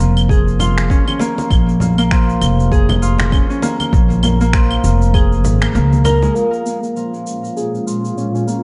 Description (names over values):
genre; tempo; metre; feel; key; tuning
organic downtempo; 99 BPM; 4/4; swing 58% on 16ths; Bb minor pentatonic; A4 = 439 Hz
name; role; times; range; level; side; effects
Celtic harp; arpeggios; 0.0-8.6 s; F3 to Bb4; -21 LUFS; equal; low-pass filter, delay
upright bass; bass; 0.0-6.3 s; F1 to Db2; -17 LUFS; equal; sidechain pumping
electronic shaker, claves and finger snaps; drums; 0.0-8.6 s; none; -26 LUFS; equal; none
bronze singing bowl; texture; 0.0-8.6 s; F4 to F5; -35 LUFS; equal; none
electronic kick drum; drums; 0.3-5.3 s; none; -17 LUFS; equal; none
congas; percussion; 0.6-6.3 s; none; -26 LUFS; equal; none
granular cloud pad; sustained chords; 7.0-8.6 s; Bb2 to F4; -24 LUFS; equal; built-in reverb, sidechain pumping
room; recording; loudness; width
light reverb, small room reverb; dark, warm production, nothing above 10.7 kHz; -15 LUFS; mono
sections
0.0-6.4 A section; 6.4-8.6 B section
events
kick drops out 5.7-6.4; filter sweep on harp 6.4-8.6; filter sweep on ambient pad 6.4-8.6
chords
0.0 Bbm7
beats
0.29 0.90 | 1.50 2.11 2.72 3.32 | 3.93 4.54 5.14 5.75 | 6.35 6.96 7.57 8.17